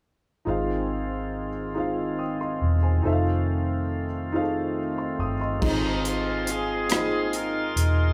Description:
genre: slow gospel.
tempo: 47 BPM (dotted quarters).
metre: 6/8.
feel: straight.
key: Ab major.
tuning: A4 = 441 Hz.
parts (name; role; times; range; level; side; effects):
warm upright piano; accompaniment; 0.5-8.1 s; Ab2 to Eb6; -31 LUFS; equal; none.
bright tonewheel organ; sustained chords; 0.5-8.1 s; Eb3 to C6; -34 LUFS; equal; slow rotary speaker, overdrive.
fingered electric bass; bass; 0.5-8.1 s; Fb1 to Ab1; -29 LUFS; equal; none.
clear horn section; melody; 5.6-8.1 s; C4 to Bb4; -30 LUFS; equal; none.
tight funk drum kit; drums; 5.6-8.0 s; crash cymbal, hi-hat, kick drum, rim click; -31 LUFS; equal; none.
room: moderate large studio reverb, RT60 1.1 s.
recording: band playing live in one room.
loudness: -26 LUFS.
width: mono.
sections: 0.5-5.6 A section; 5.6-8.1 B section.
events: none.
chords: 0.5 Ab6; 3.0 F7; 5.6 Ab6.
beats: | 0.47 1.76 | 3.04 4.33 | 5.62 6.90.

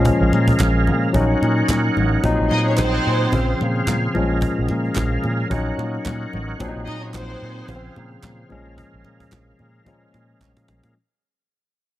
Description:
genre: disco.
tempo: 110 BPM.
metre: 4/4.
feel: swing 56% on 16ths.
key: Bb minor.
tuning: A4 = 437 Hz.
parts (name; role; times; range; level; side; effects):
barky tine electric piano; accompaniment; 0.0-11.0 s; Bb2 to Eb4; -22 LUFS; left 2 dB; none.
overdriven tonewheel organ; sustained chords; 0.0-11.0 s; Db3 to Gb5; -27 LUFS; right 2 dB; chorus vibrato, slow rotary speaker.
picked electric bass with an envelope filter; bass; 0.0-10.9 s; A1 to Bb2; -22 LUFS; right 1 dB; none.
congas; percussion; 0.0-10.8 s; none; -31 LUFS; left 2 dB; none.
cajon; drums; 0.1-10.9 s; none; -25 LUFS; right 1 dB; none.
group handclap; percussion; 0.6-10.6 s; none; -32 LUFS; right 7 dB; none.
warm studio string section; second line; 2.5-3.6, 6.9-7.9 s; C4 to Eb5; -25 LUFS; right 2 dB; none.
room: studio ambience.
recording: none.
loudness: -17 LUFS.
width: side -14 dB against mid.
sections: 0.0-11.0 A section.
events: fade-out 0.0-11.0; drum fill 9.9-11.0.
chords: 0.0 Bbm7; 1.1 Ebm7/Bb; 2.2 Ab7/Bb; 3.3 Dbmaj7/Bb; 4.1 Bbm7; 5.5 Ebm7/Bb; 6.6 Ab7/Bb; 7.7 Dbmaj7/Bb; 8.5 Bbm7.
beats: | 0.06 0.60 1.15 1.69 | 2.24 2.78 3.33 3.88 | 4.42 4.96 5.51 6.05 | 6.60 7.14 7.69 8.23 | 8.78 9.32 9.87 10.41.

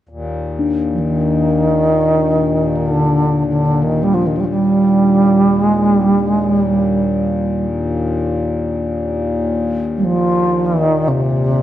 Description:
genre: world meditative, free-time meditation music.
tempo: free time.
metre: none.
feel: none.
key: Eb major.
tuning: A4 = 440 Hz.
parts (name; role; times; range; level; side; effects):
hand-pumped harmonium; drone; 0.1-11.6 s; Eb2 to Bb2; -20 LUFS; left 2 dB; none.
bronze singing bowl; texture; 0.6-8.3 s; D4; -25 LUFS; left 4 dB; stereo widening.
bass flute; melody; 0.9-11.6 s; C3 to G3; -13 LUFS; right 1 dB; slapback echo.
room: wet booth ambience, RT60 0.2 s.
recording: dark, warm production.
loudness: -13 LUFS.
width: side -12 dB against mid.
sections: 0.1-11.6 A section.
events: none.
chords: none.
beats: free time.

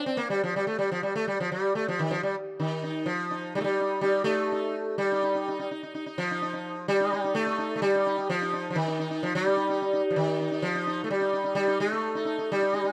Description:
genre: indian classical.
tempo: 127 BPM.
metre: 4/4.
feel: straight.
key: unclear.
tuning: A4 = 440 Hz.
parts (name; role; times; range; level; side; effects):
sitar; solo; 0.0-12.9 s; Eb3 to Eb4; -28 LUFS; equal; none.
room: small room reverb.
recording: dry, close 1970s-style studio recording.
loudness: -28 LUFS.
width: mono.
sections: 0.0-5.0 A section; 5.0-12.9 B section.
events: speeding up 0.0-12.9.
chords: none.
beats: 0.19 0.67 | 1.15 1.63 2.11 2.59 | 3.07 3.55 4.03 4.51 | 4.98 5.46 5.93 6.40 | 6.88 7.35 7.82 8.29 | 8.76 9.22 9.69 10.16 | 10.62 11.09 11.55 12.02 | 12.48.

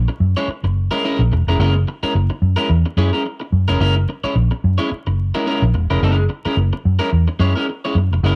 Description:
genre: funk.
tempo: 108 BPM.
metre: 4/4.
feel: swing 56% on 16ths.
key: F# mixolydian.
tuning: A4 = 442 Hz.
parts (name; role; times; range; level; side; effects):
vintage muted fingered electric bass; bass; 0.0-8.4 s; E1 to F#2; -18 LUFS; equal; none.
electric guitar at the edge of break-up; accompaniment; 0.1-8.4 s; G#3 to C#5; -23 LUFS; equal; subtle chorus.
room: little or no reverb.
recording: home recording on cassette, vinyl crackle.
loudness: -18 LUFS.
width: mono.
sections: 0.0-8.4 A section.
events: none.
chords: 0.0 F#9.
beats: 0.48 1.03 | 1.59 2.14 2.69 3.25 | 3.80 4.35 4.91 5.46 | 6.01 6.57 7.12 7.68 | 8.23.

